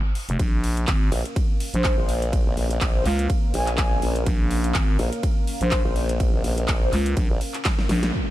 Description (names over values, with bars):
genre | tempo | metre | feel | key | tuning
bass house | 124 BPM | 4/4 | swing 56% on 16ths | unclear | A4 = 440 Hz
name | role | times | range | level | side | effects
growling FM bass | bass | 0.0-8.1 s | F1 to Db2 | -22 LUFS | equal | sidechain pumping
big-room dance drum kit | drums | 0.2-8.1 s | handclaps, hi-hat, ride cymbal, snare drum | -30 LUFS | equal | none
dark analog pad | sustained chords | 0.8-8.3 s | F3 to F5 | -33 LUFS | left 1 dB | chorus, sidechain pumping
electronic kick drum | drums | 0.4-7.8 s | none | -22 LUFS | equal | none
formant-sweep wobble bass | bass | 1.1-7.4 s | Bb1 | -24 LUFS | equal | chorus, tube saturation, sidechain pumping
breathy flute-like synth lead | melody | 1.7-6.9 s | C5 to Ab5 | -30 LUFS | equal | analog chorus, digital delay
impact | sound effects | 8.1-8.3 s | none | -25 LUFS | right 1 dB | none
room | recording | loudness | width
digital ambience | dark, warm production | -20 LUFS | side -15 dB against mid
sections
0.0-8.1 A section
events
drop 0.0-8.1; drum fill 7.7-8.1; band accent 8.0; impact 8.1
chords
0.4 Bbm